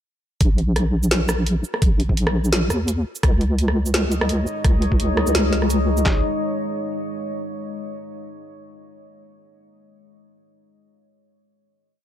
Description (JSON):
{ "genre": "half-time drum and bass", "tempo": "170 BPM", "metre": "4/4", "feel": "swing 55% on 16ths, half-time", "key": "Bb minor", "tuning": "A4 = 440 Hz", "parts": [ { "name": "deep soft wobble bass", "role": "bass", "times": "0.4-6.2 s", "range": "Bb1 to Eb2", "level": "-20 LUFS", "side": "equal", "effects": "chorus" }, { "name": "boom bap sampler-style drum kit", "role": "drums", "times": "0.4-6.1 s", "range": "handclaps, kick drum, snare drum", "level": "-18 LUFS", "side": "equal", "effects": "none" }, { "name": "drum and bass drum kit", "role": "drums", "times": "0.4-6.0 s", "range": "hi-hat, rim click, shaker, snare drum", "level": "-24 LUFS", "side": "equal", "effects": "none" }, { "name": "deep dark ambient pad", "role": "sustained chords", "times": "4.1-6.2 s", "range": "Ab3 to Eb5", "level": "-26 LUFS", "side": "left 1 dB", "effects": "chorus, built-in reverb, sidechain pumping" } ], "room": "light reverb", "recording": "dark, warm production", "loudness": "-18 LUFS", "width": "side -11 dB against mid", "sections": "0.4-6.1 drop; 6.1-7.5 final chord", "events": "drop 0.4-6.1", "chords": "0.4 Bbsus4; 3.2 Dbsus2; 6.1 Bbm", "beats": "| 0.41 0.76 1.11 1.47 | 1.82 2.17 2.52 2.88 | 3.23 3.58 3.94 4.29 | 4.64 5.00 5.35 5.70 | 6.05" }